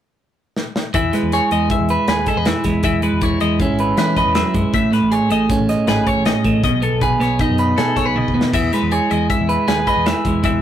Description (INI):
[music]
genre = math rock and midwest emo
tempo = 158 BPM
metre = 5/4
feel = straight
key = unclear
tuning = A4 = 439 Hz
[part]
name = modern studio drum kit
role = drums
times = 0.6-10.5 s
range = crash cymbal, hi-hat, kick drum, snare drum, toms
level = -22 LUFS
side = left 1 dB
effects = none
[part]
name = clean electric guitar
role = accompaniment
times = 0.9-10.6 s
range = A2 to D#5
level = -17 LUFS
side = right 2 dB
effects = none
[part]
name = twelve-string electric guitar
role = arpeggios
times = 0.9-10.6 s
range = A4 to E5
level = -23 LUFS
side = left 8 dB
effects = none
[part]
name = picked electric bass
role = bass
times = 0.9-10.6 s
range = G#1 to E3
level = -24 LUFS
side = left 2 dB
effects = none
[sound]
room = light reverb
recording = rough rehearsal-room recording, warm saturation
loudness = -14 LUFS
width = side -10 dB against mid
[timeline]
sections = 0.9-10.6 A section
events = drum fill 0.6-0.9, 8.2-8.5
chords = 0.0 N.C.; 0.9 Emaj7; 2.8 C#m7; 4.7 Amaj7; 6.6 B13; 8.5 Emaj7